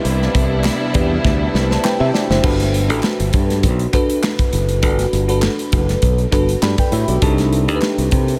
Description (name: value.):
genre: polished 1980s jazz-funk pop.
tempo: 100 BPM.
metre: 4/4.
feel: swing 54% on 16ths.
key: G major.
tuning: A4 = 441 Hz.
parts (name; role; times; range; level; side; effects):
bell-like FM electric piano; accompaniment; 0.0-8.4 s; D4 to B5; -22 LUFS; equal; subtle chorus.
warm studio string section; sustained chords; 0.0-2.4 s; C3 to E4; -27 LUFS; equal; none.
modern bright fingered electric bass; bass; 0.0-8.3 s; F#1 to C3; -20 LUFS; equal; none.
modern studio drum kit; drums; 0.1-8.4 s; crash cymbal, hi-hat, kick drum, snare drum; -22 LUFS; equal; none.
group handclap; percussion; 0.6-8.0 s; none; -36 LUFS; equal; none.
room: moderate huge ambient reverb, RT60 8.0 s.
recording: dreamy mix soaked in reverb.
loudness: -17 LUFS.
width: mono.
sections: 0.0-2.4 A section; 2.4-8.4 B section.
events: drum fill 1.2-2.4.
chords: 0.0 Cmaj7; 7.2 Cm6.